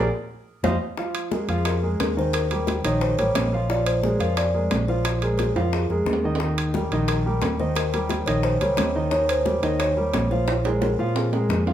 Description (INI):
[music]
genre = Afro-Cuban jazz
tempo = 177 BPM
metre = 4/4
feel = straight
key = unclear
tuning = A4 = 438 Hz
[part]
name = warm concert grand piano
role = accompaniment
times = 0.0-11.7 s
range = Eb3 to F5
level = -26 LUFS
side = right 1 dB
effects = none
[part]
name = fingered electric bass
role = bass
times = 0.0-11.7 s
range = A1 to Bb2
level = -26 LUFS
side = equal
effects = none
[part]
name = bongos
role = percussion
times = 0.6-11.7 s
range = none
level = -32 LUFS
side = left 5 dB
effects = none
[part]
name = congas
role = percussion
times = 0.6-11.7 s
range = none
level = -31 LUFS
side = left 1 dB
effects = none
[part]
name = timbales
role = percussion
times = 0.6-11.7 s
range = none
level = -30 LUFS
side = right 4 dB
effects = none
[part]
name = buzzing kalimba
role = melody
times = 1.3-11.5 s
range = Ab4 to Eb5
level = -26 LUFS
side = left 1 dB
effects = none
[sound]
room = moderate large studio reverb, RT60 0.9 s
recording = band playing live in one room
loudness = -20 LUFS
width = side -11 dB against mid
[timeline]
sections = 1.0-11.7 A section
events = band accent 0.0-1.0; drum fill 0.5-1.0, 5.6-6.4, 10.5-11.7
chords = 0.3 F5; 1.0 Bb5; 2.3 Eb; 3.7 Bb7; 6.4 Eb7; 10.5 Bb5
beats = 0.30 0.64 | 0.98 1.32 1.66 2.00 | 2.33 2.67 3.01 3.35 | 3.69 4.03 4.37 4.71 | 5.05 5.39 5.73 6.07 | 6.41 6.75 7.09 7.43 | 7.77 8.11 8.45 8.78 | 9.12 9.46 9.80 10.14 | 10.48 10.82 11.16 11.50